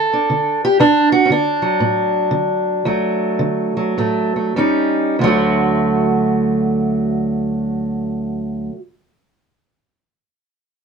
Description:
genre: acoustic country blues, solo or duo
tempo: 94-121 BPM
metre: 4/4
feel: swing 64% on 8ths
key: D major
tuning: A4 = 440 Hz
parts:
  - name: fingerpicked steel-string acoustic guitar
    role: solo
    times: 0.0-8.8 s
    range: D2 to A4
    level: -15 LUFS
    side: right 1 dB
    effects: none
room: light reverb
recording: dark, warm production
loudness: -15 LUFS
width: side -6 dB against mid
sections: 0.0-5.2 A section; 5.2-10.3 B section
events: slowing down 0.8-5.2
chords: 0.0 G5; 0.8 D; 4.5 Eb7; 5.2 D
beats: 0.31 | 0.80 1.30 1.80 2.32 | 2.85 3.39 3.96 4.55 | 5.17 5.81 6.45 7.09 | 7.73 8.37

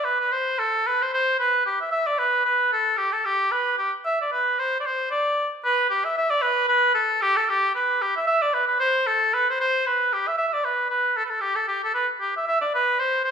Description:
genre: celtic folk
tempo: 228 BPM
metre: 4/4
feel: swing 56% on 8ths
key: unclear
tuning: A4 = 440 Hz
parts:
  - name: clear oboe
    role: solo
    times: 0.0-13.3 s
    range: G4 to E5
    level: -20 LUFS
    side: equal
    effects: none
room: moderate large studio reverb, RT60 1.1 s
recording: band playing live in one room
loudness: -20 LUFS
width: side -7 dB against mid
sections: 0.0-5.6 A section; 5.6-13.3 A section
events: none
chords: none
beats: 0.06 | 0.32 0.59 0.86 1.12 | 1.39 1.66 1.92 2.19 | 2.45 2.72 2.98 3.25 | 3.51 3.78 4.04 4.31 | 4.57 4.84 5.10 5.36 | 5.63 5.89 6.15 6.42 | 6.68 6.94 7.21 7.47 | 7.73 7.99 8.26 8.52 | 8.78 9.04 9.31 9.57 | 9.83 10.09 10.35 10.62 | 10.88 11.14 11.40 11.66 | 11.92 12.19 12.45 12.71 | 12.97 13.23

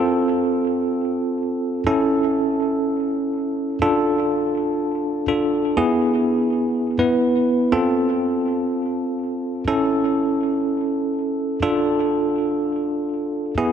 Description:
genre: pop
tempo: free time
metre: none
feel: none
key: unclear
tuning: A4 = 439 Hz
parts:
  - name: bell-like tine electric piano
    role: solo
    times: 0.0-13.7 s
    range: B3 to B4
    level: -18 LUFS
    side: right 1 dB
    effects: fast stereo tremolo, tape echo
room: moderate lush hall reverb, RT60 2.9 s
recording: dark, warm production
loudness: -19 LUFS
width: side -8 dB against mid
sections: 0.0-13.7 A section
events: none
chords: 0.0 F; 1.9 A; 3.8 Dm; 5.8 E; 7.7 F; 9.7 A; 11.6 Dm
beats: free time

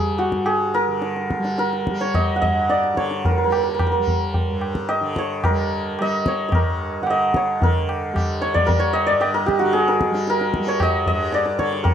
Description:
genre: indian classical, Hindustani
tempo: 110 BPM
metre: 4/4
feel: straight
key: G raga todi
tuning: A4 = 440 Hz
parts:
  - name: santur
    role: melody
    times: 0.0-11.9 s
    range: F#4 to F#5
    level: -20 LUFS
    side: right 1 dB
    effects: none
  - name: tanpura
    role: drone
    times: 0.0-11.9 s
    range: G2 to G3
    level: -27 LUFS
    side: equal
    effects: none
  - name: tabla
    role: percussion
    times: 0.2-11.9 s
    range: none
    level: -23 LUFS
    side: left 1 dB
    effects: none
room: small room reverb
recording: dry, close 1970s-style studio recording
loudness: -18 LUFS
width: side -9 dB against mid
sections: 0.0-7.6 A section; 7.6-11.9 B section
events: speeding up 0.0-11.9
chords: none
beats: 0.46 | 1.02 1.58 2.14 2.69 | 3.25 3.80 4.35 4.90 | 5.45 5.99 6.53 7.07 | 7.61 8.15 8.68 9.22 | 9.75 10.28 10.80 11.33 | 11.85

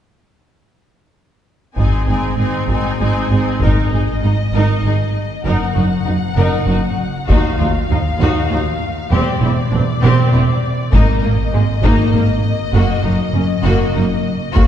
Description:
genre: cinematic, epic orchestral film score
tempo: 98 BPM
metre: 3/4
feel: straight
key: Ab mixolydian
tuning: A4 = 437 Hz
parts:
  - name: clear symphonic violin section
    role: second line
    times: 1.8-14.7 s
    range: Ab3 to Ab5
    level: -24 LUFS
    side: left 3 dB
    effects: none
  - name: rich symphonic viola section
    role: accompaniment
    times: 1.8-14.7 s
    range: Bb3 to Eb4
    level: -22 LUFS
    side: equal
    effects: none
  - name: clear symphonic cello section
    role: bass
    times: 1.8-14.6 s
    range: Eb2 to Ab2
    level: -19 LUFS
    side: right 1 dB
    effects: none
  - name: clear symphonic double bass section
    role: bass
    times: 1.8-14.6 s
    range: E1 to Eb2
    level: -18 LUFS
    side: right 2 dB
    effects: none
  - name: taiko ensemble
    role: drums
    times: 1.8-14.7 s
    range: none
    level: -17 LUFS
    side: left 1 dB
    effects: none
  - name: clear symphonic violin section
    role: melody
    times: 3.6-14.7 s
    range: D5 to Gb5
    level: -26 LUFS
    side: left 6 dB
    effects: none
room: wet concert hall reverb, RT60 2.1 s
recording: heard from further back in the room, nothing above 10.6 kHz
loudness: -13 LUFS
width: side -10 dB against mid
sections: 1.8-3.6 A section; 3.6-14.7 B section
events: build-up 3.6-14.7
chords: 1.8 Ab; 3.6 Absus2; 5.5 Gb6; 7.3 Ebmadd9; 9.1 Cadd9/E; 10.9 Absus2; 12.7 Gb6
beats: | 1.77 2.38 3.00 | 3.62 4.23 4.85 | 5.46 6.07 6.68 | 7.29 7.90 8.51 | 9.12 9.72 10.33 | 10.93 11.54 12.15 | 12.75 13.35 13.96 | 14.57

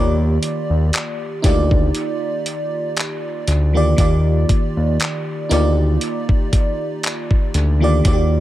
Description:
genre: contemporary R&B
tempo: 59 BPM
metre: 4/4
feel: swing 54% on 16ths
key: Eb major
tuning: A4 = 440 Hz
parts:
  - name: FM electric piano with soft pad layer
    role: accompaniment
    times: 0.0-8.4 s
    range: Eb3 to D5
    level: -20 LUFS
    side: right 1 dB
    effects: chorus
  - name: smooth synth bass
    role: bass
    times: 0.0-8.4 s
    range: D2 to Eb2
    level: -16 LUFS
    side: equal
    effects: none
  - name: dusty soul sampler-style drum kit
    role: drums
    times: 0.4-8.3 s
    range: handclaps, hi-hat, kick drum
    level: -19 LUFS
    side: equal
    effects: dub echo
room: little or no reverb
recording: echo-heavy mix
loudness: -16 LUFS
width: side -14 dB against mid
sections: 0.0-8.4 A section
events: none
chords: 0.0 Ebmaj9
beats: 0.93 1.95 2.96 | 3.98 5.00 6.02 7.03 | 8.05

